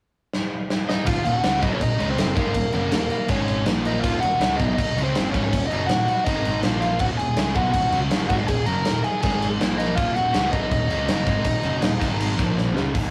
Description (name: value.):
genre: punk rock.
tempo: 162 BPM.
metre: 4/4.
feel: straight.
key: Eb minor.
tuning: A4 = 439 Hz.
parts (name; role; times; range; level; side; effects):
big rock drum kit; drums; 0.3-13.0 s; crash cymbal, hi-hat, kick drum, snare drum; -26 LUFS; equal; none.
biting lead guitar; melody; 0.9-12.5 s; Bb3 to Bb5; -27 LUFS; equal; overdrive.
sludgy distorted guitar; riff; 1.1-13.1 s; Eb2 to Db4; -28 LUFS; equal; overdrive.
fuzz picked electric bass; bass; 1.1-13.1 s; Eb1 to Db2; -31 LUFS; equal; overdrive.
room: moderate small room reverb, RT60 0.5 s.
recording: rough rehearsal-room recording.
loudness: -22 LUFS.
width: mono.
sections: 0.0-1.1 A section; 1.1-12.9 B section.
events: drum fill 0.3-1.1, 12.6-12.9.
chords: 0.0 N.C.; 1.1 Ebm; 3.3 Ab5; 3.7 Bb5; 4.0 Ebm; 6.3 Ab5; 6.6 Bb5; 7.0 Ebm; 9.2 Ab5; 9.6 Bb5; 10.0 Ebm; 12.0 Ab5; 12.4 Bb5; 12.8 Db5.